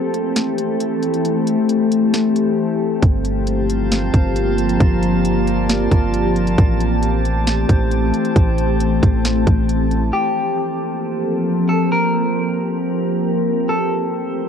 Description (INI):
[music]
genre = hip hop, atmospheric cloud-rap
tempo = 135 BPM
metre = 4/4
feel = half-time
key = G dorian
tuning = A4 = 440 Hz
[part]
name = glassy FM pad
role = sustained chords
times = 0.0-14.5 s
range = E3 to A5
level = -18 LUFS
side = left 1 dB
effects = ensemble chorus, built-in reverb, sidechain pumping, cassette tape
[part]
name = trap drum kit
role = drums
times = 0.1-10.0 s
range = hi-hat, kick drum, snare drum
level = -17 LUFS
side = equal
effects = none
[part]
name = long sustained 808-style bass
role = bass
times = 3.0-10.1 s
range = G1 to A1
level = -20 LUFS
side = equal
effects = none
[part]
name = drifting glass-harmonics texture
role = texture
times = 3.5-10.1 s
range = F4 to A5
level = -26 LUFS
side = right 3 dB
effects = chorus, built-in reverb, cassette tape
[part]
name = clean electric guitar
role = melody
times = 10.1-14.5 s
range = G4 to Bb4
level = -22 LUFS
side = left 2 dB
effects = analog delay
[sound]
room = light reverb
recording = home recording on cassette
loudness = -15 LUFS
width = side -7 dB against mid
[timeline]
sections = 0.0-10.1 A section; 10.1-14.5 B section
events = break 0.0-3.0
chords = 0.0 Am7; 3.0 Gm11; 6.6 Am7; 10.1 Gm11; 13.7 Am7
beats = 0.36 0.80 | 1.25 1.69 2.14 2.58 | 3.03 3.47 3.92 4.36 | 4.80 5.25 5.69 6.14 | 6.58 7.03 7.47 7.92 | 8.36 8.80 9.25 9.69 | 10.14 10.58 11.03 11.47 | 11.91 12.36 12.80 13.25 | 13.69 14.14